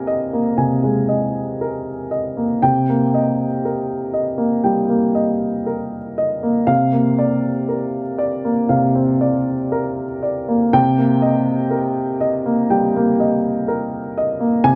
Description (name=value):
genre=neoclassical minimalist piano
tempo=59 BPM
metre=4/4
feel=rubato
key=C minor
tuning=A4 = 440 Hz
part: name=warm upright piano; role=solo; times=0.0-14.8 s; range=C3 to Ab5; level=-19 LUFS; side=equal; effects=none
room=light reverb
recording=close, detailed microphones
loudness=-19 LUFS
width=mono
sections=0.0-14.8 A section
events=none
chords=0.0 Absus2/C; 2.6 Cm7; 6.7 Bbadd9/C; 10.8 Cm7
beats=0.59 1.61 | 2.63 3.64 4.64 5.67 | 6.70 7.71 8.72 9.74 | 10.75 11.74 12.72 13.69 | 14.65